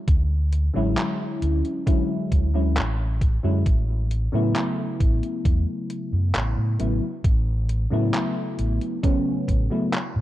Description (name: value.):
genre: vaporwave.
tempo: 67 BPM.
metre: 4/4.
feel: straight.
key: unclear.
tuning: A4 = 439 Hz.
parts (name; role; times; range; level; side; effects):
fingered electric bass; bass; 0.1-10.2 s; A1 to A2; -22 LUFS; equal; none.
detuned 8-bit digital drum machine; drums; 0.1-10.1 s; handclaps, hi-hat; -30 LUFS; equal; overdrive.
electronic kick drum; drums; 0.1-9.7 s; none; -20 LUFS; equal; overdrive.
mellow FM electric piano; accompaniment; 0.7-10.0 s; C#3 to E4; -26 LUFS; left 1 dB; analog chorus, analog delay.
room: light reverb.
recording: dark, warm production.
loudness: -21 LUFS.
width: side -14 dB against mid.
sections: 0.0-10.2 A section.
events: none.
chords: 0.0 Dmaj9#11; 3.7 A69.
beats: | 0.08 0.98 1.87 2.77 | 3.66 4.56 5.45 6.35 | 7.25 8.14 9.04 9.93.